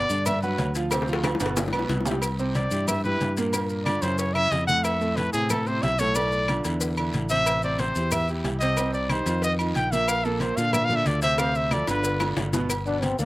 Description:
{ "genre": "Afro-Cuban jazz", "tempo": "183 BPM", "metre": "4/4", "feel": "straight", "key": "C major", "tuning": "A4 = 440 Hz", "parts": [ { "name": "warm trumpet", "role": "melody", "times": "0.0-12.3 s", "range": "Ab4 to G5", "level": "-25 LUFS", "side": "equal", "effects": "none" }, { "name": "clear concert grand piano", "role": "accompaniment", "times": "0.0-13.2 s", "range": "A2 to G5", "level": "-29 LUFS", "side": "right 2 dB", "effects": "none" }, { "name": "modern bright fingered electric bass", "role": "bass", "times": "0.0-13.2 s", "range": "G1 to Bb2", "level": "-28 LUFS", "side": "equal", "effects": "none" }, { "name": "congas", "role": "percussion", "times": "0.1-13.2 s", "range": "none", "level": "-33 LUFS", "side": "equal", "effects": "none" }, { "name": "guiro", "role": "percussion", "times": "0.1-13.2 s", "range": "none", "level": "-42 LUFS", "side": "left 3 dB", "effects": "none" }, { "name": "maracas", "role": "percussion", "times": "0.1-13.2 s", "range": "none", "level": "-35 LUFS", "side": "left 3 dB", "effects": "none" }, { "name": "agogo bells and timbales", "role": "percussion", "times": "0.3-13.2 s", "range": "none", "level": "-33 LUFS", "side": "right 3 dB", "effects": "slapback echo" }, { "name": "claves", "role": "percussion", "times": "0.3-12.9 s", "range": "none", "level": "-34 LUFS", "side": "left 4 dB", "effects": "none" }, { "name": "cowbell and bongos", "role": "percussion", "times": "0.3-13.2 s", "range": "none", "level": "-33 LUFS", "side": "left 4 dB", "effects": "slapback echo" }, { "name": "mellow trombone", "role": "second line", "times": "12.9-13.2 s", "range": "Bb3 to D4", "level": "-26 LUFS", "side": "left 3 dB", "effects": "none" } ], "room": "little or no reverb", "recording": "recorded outdoors, with no room sound", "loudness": "-22 LUFS", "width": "side -18 dB against mid", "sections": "0.0-2.2 A section; 2.2-12.7 A section", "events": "trumpet solo 0.0-12.7; drum fill 0.9-2.2, 11.4-12.7", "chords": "0.0 Gmaj7; 0.9 Dm7; 1.6 G; 2.2 Cmaj9; 3.5 Gm7; 4.2 F#5; 4.8 Fmaj7; 6.2 Bm7b5; 6.8 Amadd11; 7.5 Am7; 8.8 Cm; 9.4 Ebadd9; 10.1 Bbadd9; 11.4 Dm7; 12.0 G7; 12.7 G" }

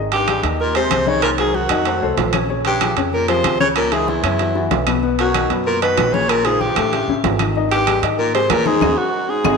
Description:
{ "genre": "Afro-Cuban jazz", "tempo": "190 BPM", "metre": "4/4", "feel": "straight", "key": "unclear", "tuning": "A4 = 440 Hz", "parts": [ { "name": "warm baby grand piano", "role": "accompaniment", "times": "0.0-9.6 s", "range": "A2 to Eb5", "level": "-22 LUFS", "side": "left 7 dB", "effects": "none" }, { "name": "upright bass", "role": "bass", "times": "0.0-9.6 s", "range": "Ab1 to Ab2", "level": "-25 LUFS", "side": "right 2 dB", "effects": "none" }, { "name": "clear alto saxophone", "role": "melody", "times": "0.1-9.6 s", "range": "Fb4 to Db5", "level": "-20 LUFS", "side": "right 2 dB", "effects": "none" }, { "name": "breathy baritone saxophone", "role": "second line", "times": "0.1-9.6 s", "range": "Fb2 to Db3", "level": "-23 LUFS", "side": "left 4 dB", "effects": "none" }, { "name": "congas", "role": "percussion", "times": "0.1-9.5 s", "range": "none", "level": "-27 LUFS", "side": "left 9 dB", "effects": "none" }, { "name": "timbales", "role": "percussion", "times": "0.1-9.5 s", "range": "none", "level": "-22 LUFS", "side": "right 13 dB", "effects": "none" }, { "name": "claves", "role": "percussion", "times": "0.3-9.5 s", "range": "none", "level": "-32 LUFS", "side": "left 9 dB", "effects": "none" } ], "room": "wet echo chamber reverb, RT60 1.6 s, small room reverb", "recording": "1960s-style stereo with parts hard left and right", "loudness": "-15 LUFS", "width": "side -5 dB against mid", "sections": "0.0-9.6 A section", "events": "band accent 8.8-9.6", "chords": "0.0 Abmaj7; 1.2 Cm7b5; 1.9 F; 2.5 Bbm7; 3.8 Dbm; 4.4 Bsus4; 5.0 Bmaj7; 6.3 Bbm; 6.9 A7; 7.6 Ab5; 8.8 Ebm7" }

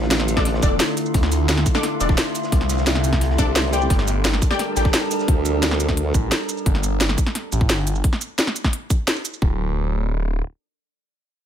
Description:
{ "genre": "dark technical drum and bass", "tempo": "174 BPM", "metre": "4/4", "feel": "straight", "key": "unclear", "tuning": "A4 = 441 Hz", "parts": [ { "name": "metallic inharmonic drone", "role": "sustained chords", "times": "0.0-6.6 s", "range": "D3 to Bb4", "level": "-26 LUFS", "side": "right 1 dB", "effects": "chorus, built-in reverb, sidechain pumping" }, { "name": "formant-sweep wobble bass", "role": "bass", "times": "0.0-0.6, 3.4-6.1 s", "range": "A1 to D2", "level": "-22 LUFS", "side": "equal", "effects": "chorus" }, { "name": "crunchy breakbeat drum kit", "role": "drums", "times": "0.0-5.3 s", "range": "hi-hat, snare drum", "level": "-35 LUFS", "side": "equal", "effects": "none" }, { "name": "drum and bass drum kit", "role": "drums", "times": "0.1-9.4 s", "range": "hi-hat, shaker, snare drum", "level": "-22 LUFS", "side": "equal", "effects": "studio reverb" }, { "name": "orchestra-hit-like synth stab", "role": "stabs", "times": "0.4-4.8 s", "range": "D4 to G5", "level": "-26 LUFS", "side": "left 4 dB", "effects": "built-in reverb, phaser, dub echo" }, { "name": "electronic kick drum", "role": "drums", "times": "0.4-9.5 s", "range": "none", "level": "-20 LUFS", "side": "equal", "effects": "studio reverb" }, { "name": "phased detuned saw bass", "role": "bass", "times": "0.6-10.4 s", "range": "D1 to D2", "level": "-21 LUFS", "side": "equal", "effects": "phaser, overdrive" } ], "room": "digital ambience", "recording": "none", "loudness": "-18 LUFS", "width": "side -10 dB against mid", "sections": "0.0-9.4 A section; 9.4-11.5 B section", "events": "drop 0.0-9.4", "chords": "0.0 Dm; 3.9 Gm; 9.4 N.C." }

